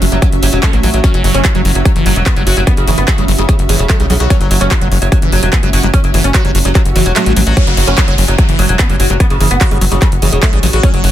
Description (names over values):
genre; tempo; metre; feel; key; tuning
psychedelic trance; 147 BPM; 4/4; straight; unclear; A4 = 440 Hz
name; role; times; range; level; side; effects
liquid acid bass; riff; 0.0-11.1 s; E3 to G4; -19 LUFS; moving between left 3 dB and right 4 dB; phaser, auto-pan, sidechain pumping, ping-pong delay
tight sequencer bass; bass; 0.0-11.1 s; E1 to B1; -14 LUFS; equal; tube saturation
big-room dance drum kit; drums; 0.0-11.1 s; handclaps, hi-hat; -19 LUFS; equal; none
granular cloud pad; texture; 0.0-11.1 s; C#4 to C#6; -22 LUFS; right 1 dB; built-in reverb, sidechain pumping
oud; melody; 0.1-11.1 s; C#3 to C#4; -18 LUFS; equal; phaser, vintage 12-bit sampler grit, sidechain pumping, ping-pong delay
electronic kick drum; drums; 0.2-10.9 s; none; -12 LUFS; equal; none
swell and downlifter; sound effects; 6.9-10.8 s; none; -22 LUFS; left 3 dB; none
resonant blip pluck; second line; 7.7-9.9 s; B3; -28 LUFS; equal; phaser, wide subtle chorus, cassette tape, sidechain pumping, high-pass filter, tape echo
room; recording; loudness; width
little or no reverb; dense, heavily limited modern master; -9 LUFS; side -12 dB against mid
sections
0.0-7.6 A section; 7.6-11.1 B section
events
swell 6.9-7.6; kick drops out 7.2-7.6; drop 7.6-11.1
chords
0.0 F#5